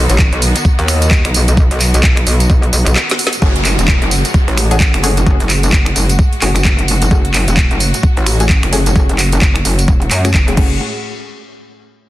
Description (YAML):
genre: bass house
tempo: 130 BPM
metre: 4/4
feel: swing 59% on 16ths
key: F# dorian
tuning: A4 = 440 Hz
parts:
  - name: clear studio string section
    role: sustained chords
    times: 0.0-10.8 s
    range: A2 to F#4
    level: -23 LUFS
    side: left 1 dB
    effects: sidechain pumping
  - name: metallic wobble bass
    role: bass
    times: 0.0-10.8 s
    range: E1 to F#2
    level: -14 LUFS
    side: equal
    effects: chorus, tube saturation, sidechain pumping
  - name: garage drum kit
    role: drums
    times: 0.1-10.7 s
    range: crash cymbal, finger snaps, handclaps, hi-hat, snare drum, tambourine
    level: -17 LUFS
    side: right 1 dB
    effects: overdrive
  - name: electronic kick drum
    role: drums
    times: 0.2-10.7 s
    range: none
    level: -12 LUFS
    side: equal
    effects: overdrive
  - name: band-passed chord stab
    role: stabs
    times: 3.4-10.8 s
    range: A3 to G#4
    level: -22 LUFS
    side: left 3 dB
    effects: chorus, cassette tape, sidechain pumping, tape echo
  - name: downlifter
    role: sound effects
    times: 3.4-7.1 s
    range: none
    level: -24 LUFS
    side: equal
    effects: none
room: little or no reverb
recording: dense, heavily limited modern master, lossy compression artefacts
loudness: -10 LUFS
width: side -16 dB against mid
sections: 0.0-3.4 A section; 3.4-10.8 B section; 10.8-12.1 C section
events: drop 0.0-3.4; break 3.0-3.4; drum fill 3.0-3.4; filter sweep on synth stab 3.4-10.8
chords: 0.0 B; 3.4 F#madd9; 10.8 N.C.